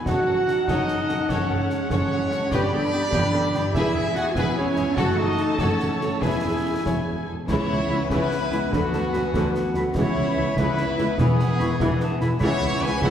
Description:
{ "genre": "cinematic, heroic adventure film score", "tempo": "98 BPM (dotted quarters)", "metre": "6/8", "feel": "straight", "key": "E major", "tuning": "A4 = 440 Hz", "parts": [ { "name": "dark symphonic violin section", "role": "melody", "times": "0.0-13.1 s", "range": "B3 to B5", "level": "-32 LUFS", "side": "left 4 dB", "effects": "none" }, { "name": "silver concert flute", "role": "second line", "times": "0.0-13.1 s", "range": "E5 to C#6", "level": "-36 LUFS", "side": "left 1 dB", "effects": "none" }, { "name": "warm oboe", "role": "second line", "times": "0.0-13.1 s", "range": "F#5 to B5", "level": "-36 LUFS", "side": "equal", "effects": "none" }, { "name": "warm symphonic viola section", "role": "accompaniment", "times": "0.0-13.1 s", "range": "C#3 to B4", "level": "-31 LUFS", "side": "equal", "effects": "none" }, { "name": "dark French horn section", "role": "sustained chords", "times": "0.0-12.9 s", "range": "B3 to F#4", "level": "-28 LUFS", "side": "equal", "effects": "none" }, { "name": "mellow clarinet", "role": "second line", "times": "0.1-13.1 s", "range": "A3 to F#4", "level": "-35 LUFS", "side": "left 1 dB", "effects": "none" }, { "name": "warm studio violin section", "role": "second line", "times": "0.1-13.1 s", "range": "B3 to C#5", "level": "-33 LUFS", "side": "left 2 dB", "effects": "none" }, { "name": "bright trumpet section", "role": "stabs", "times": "0.1-13.1 s", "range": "F#4 to G#5", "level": "-29 LUFS", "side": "equal", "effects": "none" }, { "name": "clear symphonic double bass section", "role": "bass", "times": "0.1-13.1 s", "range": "E1 to G2", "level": "-29 LUFS", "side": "right 1 dB", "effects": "none" }, { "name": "mellow tuba", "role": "bass", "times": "0.1-13.1 s", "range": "E1 to D2", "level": "-31 LUFS", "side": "right 2 dB", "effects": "none" }, { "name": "warm symphonic cello section", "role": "bass", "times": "0.1-13.1 s", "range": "C#2 to F#4", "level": "-31 LUFS", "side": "right 2 dB", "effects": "none" }, { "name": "concert snare drum, concert bass drum and clash cymbals", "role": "drums", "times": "0.1-13.1 s", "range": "none", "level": "-28 LUFS", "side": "equal", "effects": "none" } ], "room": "wet scoring stage reverb, RT60 1.8 s", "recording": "heard from further back in the room", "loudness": "-20 LUFS", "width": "side -9 dB against mid", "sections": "0.0-7.5 A section; 7.5-13.1 B section", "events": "none", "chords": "0.1 F#m; 2.5 G; 3.7 E; 5.0 F#m; 6.2 E; 7.5 C#m7; 8.7 Bm/D; 10.0 C#m7; 11.2 E; 12.4 C#m7" }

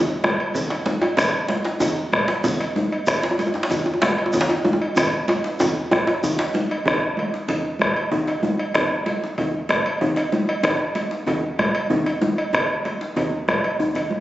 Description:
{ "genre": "west african traditional, West African drum ensemble", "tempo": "127 BPM (dotted quarters)", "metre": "12/8", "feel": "straight", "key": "none", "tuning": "none", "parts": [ { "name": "djembe", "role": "percussion", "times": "0.0-6.5 s", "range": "none", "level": "-23 LUFS", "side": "equal", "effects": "none" }, { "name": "congas", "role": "percussion", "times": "0.1-14.2 s", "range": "none", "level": "-25 LUFS", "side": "right 1 dB", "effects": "none" }, { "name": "bombo", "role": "percussion", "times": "0.2-14.2 s", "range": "none", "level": "-24 LUFS", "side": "equal", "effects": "none" }, { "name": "cowbell", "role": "percussion", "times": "0.2-14.1 s", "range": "none", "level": "-27 LUFS", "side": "right 1 dB", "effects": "none" }, { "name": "djembe", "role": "percussion", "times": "0.6-14.1 s", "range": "none", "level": "-28 LUFS", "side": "left 2 dB", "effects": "none" }, { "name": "shekere", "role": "percussion", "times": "0.6-6.4 s", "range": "none", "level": "-34 LUFS", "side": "equal", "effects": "none" } ], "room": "wet recital hall reverb, RT60 1.5 s", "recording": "recorded on a phone in the room, studio reverb, nothing above 7.9 kHz", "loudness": "-19 LUFS", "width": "side -15 dB against mid", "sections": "0.0-6.9 A section; 6.9-14.2 B section", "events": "drum fill 5.0-6.9, 13.8-14.2", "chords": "none" }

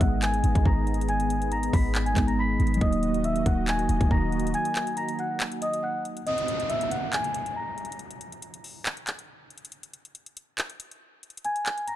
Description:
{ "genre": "hip hop, trap", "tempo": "139 BPM", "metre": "4/4", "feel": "half-time", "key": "unclear", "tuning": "A4 = 440 Hz", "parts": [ { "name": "large celesta", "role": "melody", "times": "0.0-8.0, 11.4-12.0 s", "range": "D#5 to B6", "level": "-29 LUFS", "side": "equal", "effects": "low-pass filter, ping-pong delay" }, { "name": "mellow tine electric piano", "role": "accompaniment", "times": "0.0-6.3 s", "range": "F#3 to D#4", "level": "-30 LUFS", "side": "right 2 dB", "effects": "medium stereo tremolo, low-pass filter" }, { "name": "warm analog pad", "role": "sustained chords", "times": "0.0-6.2 s", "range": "D#3 to D#5", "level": "-33 LUFS", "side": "equal", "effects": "chorus" }, { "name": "clean 808-style bass", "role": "bass", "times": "0.0-4.5 s", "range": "D#1 to G#1", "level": "-26 LUFS", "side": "equal", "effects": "none" }, { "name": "trap drum kit", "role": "drums", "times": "0.0-12.0 s", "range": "handclaps, hi-hat, kick drum", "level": "-28 LUFS", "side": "equal", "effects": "none" }, { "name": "downlifter", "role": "sound effects", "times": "6.3-9.7 s", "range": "none", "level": "-34 LUFS", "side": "right 1 dB", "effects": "none" } ], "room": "digital ambience", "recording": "dark, warm production", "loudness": "-24 LUFS", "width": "side -13 dB against mid", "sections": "0.0-6.3 A section; 6.3-12.0 B section", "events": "break 4.5-6.3, 6.3-12.0; filter sweep 6.3-12.0", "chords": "0.0 G#m; 2.8 D#m" }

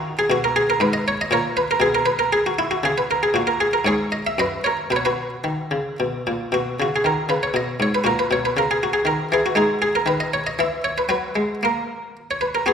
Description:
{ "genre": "classical, baroque-style suite movement for harpsichord", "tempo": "108-121 BPM", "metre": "3/4", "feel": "rubato", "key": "B major", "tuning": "A4 = 440 Hz", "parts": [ { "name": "buff-stop harpsichord", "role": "solo", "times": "0.0-12.7 s", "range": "F#2 to E5", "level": "-18 LUFS", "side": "equal", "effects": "none" } ], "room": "wet recital hall reverb, RT60 1.6 s", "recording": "recorded in a church or concert hall", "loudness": "-18 LUFS", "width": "side -7 dB against mid", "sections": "0.0-6.5 A section; 6.5-12.7 B section", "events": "none", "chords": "0.3 G#madd9; 1.8 G#m11/B; 3.3 N.C.; 4.4 F#; 4.9 B; 8.1 F#7/A#; 9.6 G#5; 10.6 N.C.; 11.1 F#" }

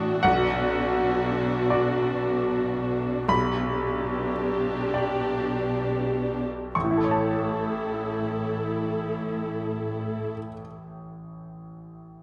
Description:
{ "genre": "cinematic", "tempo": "32-43 BPM (dotted quarters)", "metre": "6/8", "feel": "rubato", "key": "A mixolydian", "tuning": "A4 = 440 Hz", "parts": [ { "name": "bright grand piano", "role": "accompaniment", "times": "0.0-12.2 s", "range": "A1 to C#6", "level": "-30 LUFS", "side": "equal", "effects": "none" }, { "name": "warm studio viola section", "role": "accompaniment", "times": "0.0-10.3 s", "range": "D4 to A4", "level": "-30 LUFS", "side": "equal", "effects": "none" }, { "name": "dark studio cello section", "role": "bass", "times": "0.0-10.3 s", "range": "A2 to B2", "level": "-33 LUFS", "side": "equal", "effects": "none" } ], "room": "wet recital hall reverb, RT60 1.9 s", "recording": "none", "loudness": "-26 LUFS", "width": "mono", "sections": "0.0-6.7 A section; 6.7-10.4 B section", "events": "slowing down 0.0-6.7", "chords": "0.2 Bm; 3.3 G/B; 6.7 A" }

